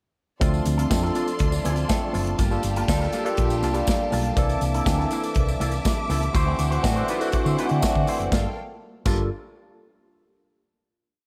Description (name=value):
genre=disco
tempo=122 BPM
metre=4/4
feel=straight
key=G dorian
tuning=A4 = 439 Hz
part: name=barky tine electric piano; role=accompaniment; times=0.4-9.3 s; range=E3 to D5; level=-29 LUFS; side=equal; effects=overdrive, phaser
part: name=electric guitar with an envelope filter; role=accompaniment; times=0.4-9.2 s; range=Bb3 to C5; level=-34 LUFS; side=equal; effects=spring reverb
part: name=clear studio string section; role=sustained chords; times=0.4-8.5 s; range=Bb3 to D6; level=-34 LUFS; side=equal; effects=none
part: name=hollow-body short-scale fingered electric bass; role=bass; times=0.4-9.3 s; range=F#1 to D3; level=-27 LUFS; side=equal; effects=none
part: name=modern studio drum kit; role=drums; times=0.4-9.2 s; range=crash cymbal, hi-hat, kick drum, snare drum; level=-28 LUFS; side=equal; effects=none
part: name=tambourine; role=percussion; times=0.4-9.3 s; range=none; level=-42 LUFS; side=equal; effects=none
room=light reverb, small room ambience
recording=none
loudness=-23 LUFS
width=mono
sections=0.4-8.3 pre-chorus; 8.3-10.3 final chord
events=none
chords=0.4 Dm7; 2.4 Gm9; 4.4 C13; 6.3 D9; 8.3 Gm9